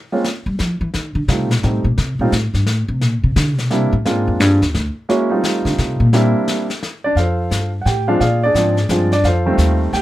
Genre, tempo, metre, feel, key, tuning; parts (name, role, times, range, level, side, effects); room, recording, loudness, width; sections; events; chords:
jazz piano trio; 174 BPM; 3/4; swing 64% on 8ths; F mixolydian; A4 = 440 Hz
warm baby grand piano; melody; 0.1-10.0 s; Eb3 to G5; -17 LUFS; right 1 dB
vintage brush drum kit; drums; 0.2-10.0 s; brushed snare drum, hi-hat, snare drum; -25 LUFS; left 3 dB
upright bass; bass; 0.5-10.0 s; D2 to G3; -16 LUFS; equal
light reverb; -15 LUFS; side -15 dB against mid
0.0-7.2 A section; 7.2-10.0 B section
upright bass solo 0.0-7.2
0.0 N.C.; 0.9 F9 (rootless); 3.0 C7sus2; 4.1 Bb9; 5.1 F9; 6.1 C9; 7.2 Fadd9; 8.2 Bb9; 9.2 F9